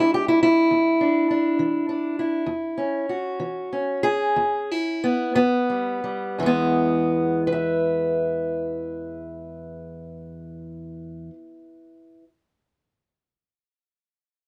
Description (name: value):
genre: blues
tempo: 56-68 BPM (dotted quarters)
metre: 12/8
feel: straight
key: E mixolydian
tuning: A4 = 440 Hz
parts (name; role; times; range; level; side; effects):
- fingerpicked steel-string acoustic guitar; solo; 0.0-12.2 s; E2 to E5; -24 LUFS; equal; none
room: light reverb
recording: close, detailed microphones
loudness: -23 LUFS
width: mono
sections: 0.0-6.4 A section; 6.4-10.7 B section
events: slowing down 1.3-6.4; stop 2.5-5.4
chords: 0.0 E7; 2.5 E69; 5.4 Fsus2; 6.4 E